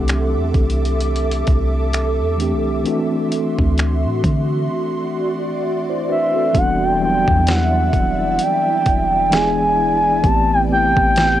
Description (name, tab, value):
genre	contemporary R&B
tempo	65 BPM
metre	4/4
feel	swing 58% on 16ths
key	E minor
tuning	A4 = 440 Hz
part	mellow tine electric piano	accompaniment	0.0-11.4 s	E3 to E5	-21 LUFS	equal	medium stereo tremolo
part	ethereal airy pad	sustained chords	0.0-11.4 s	C3 to D6	-24 LUFS	right 1 dB	ensemble chorus, built-in reverb
part	soft 808-style bass	bass	0.0-11.4 s	E1 to D3	-20 LUFS	equal	none
part	dusty soul sampler-style drum kit	drums	0.1-11.4 s	finger snaps, hi-hat, kick drum, snare drum	-20 LUFS	equal	cassette tape
part	gliding portamento lead	melody	6.1-11.4 s	E5 to A5	-16 LUFS	equal	chorus, phaser, cassette tape
room	light reverb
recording	home recording on cassette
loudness	-15 LUFS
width	side -12 dB against mid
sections	0.0-6.5 A section; 6.5-11.4 B section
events	none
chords	0.0 C69; 2.9 D9; 6.5 Em9; 9.3 E7; 10.2 Am9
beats	0.09 1.01 1.93 | 2.85 3.78 4.70 5.62 | 6.55 7.47 8.39 9.32 | 10.24 11.16